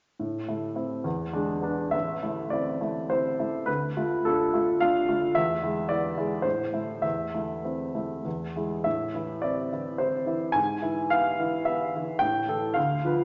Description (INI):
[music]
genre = classical, romantic character piece for solo piano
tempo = 96-113 BPM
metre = 3/4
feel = rubato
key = A minor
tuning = A4 = 440 Hz
[part]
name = warm baby grand piano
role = solo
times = 0.2-13.2 s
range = A1 to G#5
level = -28 LUFS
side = equal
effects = none
[sound]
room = wet recital hall reverb, RT60 1.5 s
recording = nothing above 7.5 kHz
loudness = -28 LUFS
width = mono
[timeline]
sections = 0.2-1.9 A section; 1.9-13.2 B section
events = none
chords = 0.2 Am; 1.1 E7; 1.9 Am; 3.7 Dm; 5.4 E; 6.4 Am; 7.0 Am/E; 8.2 E; 8.8 Am; 10.6 E/G#; 12.2 A5